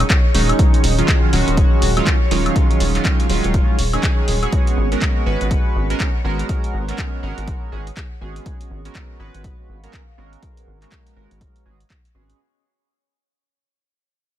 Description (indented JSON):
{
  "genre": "deep house",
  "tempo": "122 BPM",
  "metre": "4/4",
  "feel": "swing 60% on 16ths",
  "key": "unclear",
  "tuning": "A4 = 440 Hz",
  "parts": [
    { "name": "rubbery square bass", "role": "bass", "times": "0.0-12.3 s", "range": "Eb1 to Ab1", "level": "-21 LUFS", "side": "equal", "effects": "sidechain pumping" },
    { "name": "punchy analog drum machine", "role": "drums", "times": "0.0-12.4 s", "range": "handclaps, hi-hat, woodblock", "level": "-24 LUFS", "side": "left 1 dB", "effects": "none" },
    { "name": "soft string machine", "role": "texture", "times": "0.0-12.4 s", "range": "Db5 to Db6", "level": "-32 LUFS", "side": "left 2 dB", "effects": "phaser, ensemble chorus, sidechain pumping" },
    { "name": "warbly tape-like pad", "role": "texture", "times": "0.0-12.4 s", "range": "Ab4 to Gb5", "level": "-32 LUFS", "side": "right 1 dB", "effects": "chorus, built-in reverb, sidechain pumping" },
    { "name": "electronic kick drum", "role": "drums", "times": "0.1-12.0 s", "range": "none", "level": "-18 LUFS", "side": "equal", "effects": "none" },
    { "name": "chorused polysynth", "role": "stabs", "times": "0.3-12.4 s", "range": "Eb3 to Cb5", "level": "-22 LUFS", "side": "right 3 dB", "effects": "sidechain pumping, ping-pong delay" }
  ],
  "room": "digital ambience",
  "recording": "none",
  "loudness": "-15 LUFS",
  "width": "side -12 dB against mid",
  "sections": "0.0-12.4 A section",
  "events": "fade-out 0.0-12.4",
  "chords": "0.0 Ebm11; 4.5 Abm11"
}